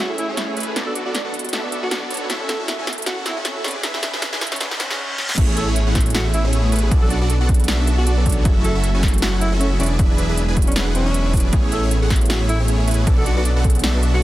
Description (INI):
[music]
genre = future bass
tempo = 156 BPM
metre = 4/4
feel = swing 56% on 16ths, half-time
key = A major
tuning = A4 = 440 Hz
[part]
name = warm alto saxophone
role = melody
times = 0.0-14.2 s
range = C#4 to A4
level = -28 LUFS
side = equal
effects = sidechain pumping, dub echo
[part]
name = soft round pluck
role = arpeggios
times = 0.0-14.2 s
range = F#4 to E5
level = -32 LUFS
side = right 4 dB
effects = lush chorus, sidechain pumping, dub echo
[part]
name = supersaw chords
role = riff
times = 0.0-14.2 s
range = A3 to G#5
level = -25 LUFS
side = equal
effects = sidechain pumping
[part]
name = wide detuned saw bass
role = bass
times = 0.0-14.2 s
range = E1 to B1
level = -21 LUFS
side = equal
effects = chorus, sidechain pumping, high-pass filter
[part]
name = riser and reverse cymbal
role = sound effects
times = 3.0-5.4 s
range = none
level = -33 LUFS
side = equal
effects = none
[part]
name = big-room dance drum kit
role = drums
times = 0.2-14.1 s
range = crash cymbal, hi-hat, ride cymbal, snare drum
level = -24 LUFS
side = equal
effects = none
[part]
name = mellow tine electric piano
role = accompaniment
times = 5.4-14.2 s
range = F#3 to A4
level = -28 LUFS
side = right 4 dB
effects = fast stereo tremolo, sidechain pumping
[part]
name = electronic kick drum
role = drums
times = 5.4-13.7 s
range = none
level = -18 LUFS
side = equal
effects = none
[sound]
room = little or no reverb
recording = dense, heavily limited modern master, high-pass filter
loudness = -16 LUFS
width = side -15 dB against mid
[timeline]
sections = 0.0-5.4 A section; 5.4-14.2 B section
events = build-up 0.0-5.4; drum fill 0.0-5.0, 5.2; filter sweep on supersaw synth 0.0-5.4; filter sweep 0.0-5.4; reverse cymbal 4.7-5.4; drop 5.4-14.2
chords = 0.0 Amaj7; 0.8 Bm7; 2.3 F#m7; 3.6 E7; 5.4 Amaj7; 6.9 Bm7; 8.5 F#m7; 9.8 E7; 11.5 Amaj7; 13.1 Bm7